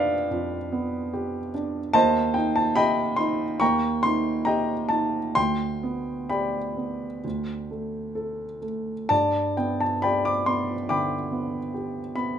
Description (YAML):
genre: classical, romantic character piece for solo piano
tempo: 62-74 BPM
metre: 4/4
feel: rubato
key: G major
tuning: A4 = 441 Hz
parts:
  - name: warm grand piano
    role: solo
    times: 0.0-12.4 s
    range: D2 to D6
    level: -23 LUFS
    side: equal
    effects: none
room: moderate large studio reverb, RT60 0.8 s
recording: nothing above 10.7 kHz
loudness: -23 LUFS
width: side -9 dB against mid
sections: 0.0-12.4 A section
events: none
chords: 0.0 G7/F; 1.9 Cm/Eb; 3.6 Eb; 5.4 G/D; 7.2 D5; 9.1 G